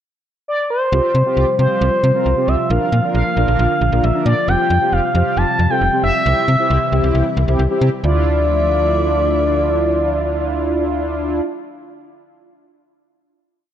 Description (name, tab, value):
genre	pop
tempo	135 BPM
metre	4/4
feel	straight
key	D minor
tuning	A4 = 440 Hz
part	expressive synth lead	melody	0.5-11.4 s	C5 to A5	-18 LUFS	equal	chorus, slapback echo
part	mellow synth brass	accompaniment	0.9-11.4 s	C4 to Bb4	-21 LUFS	right 1 dB	chorus
part	soft string machine	sustained chords	0.9-11.4 s	C3 to E5	-24 LUFS	equal	phaser, ensemble chorus
part	slap-like FM bass	bass	0.9-11.4 s	F1 to C3	-17 LUFS	equal	none
room	moderate lush hall reverb, RT60 2.6 s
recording	dark, warm production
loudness	-14 LUFS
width	side -10 dB against mid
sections	0.0-0.9 pickup bar; 0.9-8.0 pre-chorus; 8.0-11.6 final chord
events	none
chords	0.0 N.C.; 0.9 Csus4; 2.7 Bb; 4.5 Fsus2; 6.3 C; 8.0 Dmadd9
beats	0.04 0.48 | 0.92 1.37 1.81 2.26 | 2.70 3.15 3.59 4.04 | 4.48 4.92 5.37 5.81 | 6.26 6.70 7.15 7.59 | 8.04 8.48 8.92 9.37 | 9.81 10.26 10.70 11.15